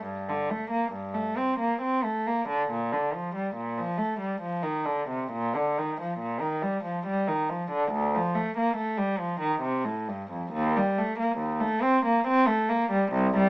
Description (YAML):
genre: classical, baroque-style suite movement for unaccompanied cello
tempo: 69 BPM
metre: 3/4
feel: rubato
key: G minor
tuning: A4 = 439 Hz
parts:
  - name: warm cello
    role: solo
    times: 0.0-13.5 s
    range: C2 to C4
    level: -25 LUFS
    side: equal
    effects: none
room: light reverb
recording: small speaker sound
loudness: -25 LUFS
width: side -21 dB against mid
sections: 0.0-13.5 A section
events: none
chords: none